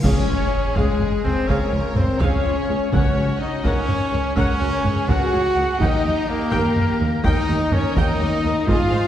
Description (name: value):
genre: cinematic, epic orchestral film score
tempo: 83 BPM (dotted quarters)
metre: 12/8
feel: straight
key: Db major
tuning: A4 = 440 Hz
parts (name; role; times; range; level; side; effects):
- rich symphonic violin section; melody; 0.0-9.1 s; Ab4 to Gb5; -32 LUFS; left 2 dB; none
- clear studio violin section; second line; 0.0-9.1 s; Gb4 to Db5; -33 LUFS; equal; none
- mellow hollow small flute group; second line; 0.0-9.1 s; Ab4 to Gb5; -30 LUFS; left 3 dB; none
- warm studio viola section; accompaniment; 0.0-9.0 s; Db4 to G5; -30 LUFS; right 1 dB; none
- mellow French horn section; sustained chords; 0.0-9.1 s; Ab3 to Gb4; -24 LUFS; left 2 dB; none
- bright trumpet; stabs; 0.0-9.1 s; Ab3 to Gb4; -27 LUFS; right 2 dB; none
- dark symphonic cello section; bass; 0.0-9.0 s; Db2 to Ab2; -27 LUFS; right 1 dB; none
- rich symphonic double bass section; bass; 0.0-9.0 s; Ab1 to Eb2; -25 LUFS; right 1 dB; none
- taiko ensemble; drums; 0.0-9.1 s; none; -24 LUFS; equal; none
- clash cymbals and concert bass drum; percussion; 0.0-1.0 s; none; -29 LUFS; equal; none
- cymbal swell and impact; sound effects; 0.0-2.9 s; none; -33 LUFS; equal; none
- timpani; percussion; 2.9-3.6 s; Db3; -29 LUFS; equal; none
room: wet scoring stage reverb, RT60 1.7 s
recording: heard from further back in the room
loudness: -17 LUFS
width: side -11 dB against mid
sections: 0.0-9.1 A section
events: band accent 0.0-0.5; impact 0.0-2.9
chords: 0.0 Db; 2.9 Gb/Db; 5.8 Eb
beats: | 0.05 0.77 1.49 2.21 | 2.92 3.65 4.37 5.08 | 5.80 6.52 7.24 7.96 | 8.68